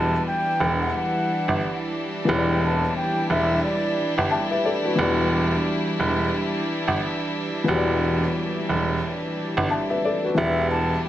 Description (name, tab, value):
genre	hip hop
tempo	89 BPM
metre	4/4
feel	swing 60% on 16ths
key	E minor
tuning	A4 = 441 Hz
part	breathy mellow concert flute	melody	0.0-4.5, 10.4-11.1 s	D5 to A5	-26 LUFS	equal	high-pass filter, low-pass filter, tape echo
part	dark upright piano	accompaniment	0.0-11.1 s	E3 to A5	-26 LUFS	left 3 dB	cassette tape, high-pass filter, low-pass filter
part	rich chamber string section	sustained chords	0.0-11.1 s	E3 to E4	-27 LUFS	right 1 dB	high-pass filter, low-pass filter
part	bright baby grand piano	bass	0.0-10.9 s	E1 to G1	-24 LUFS	right 2 dB	none
room	light reverb, small room ambience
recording	none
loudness	-20 LUFS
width	side -12 dB against mid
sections	0.0-11.1 A section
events	none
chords	0.0 Em9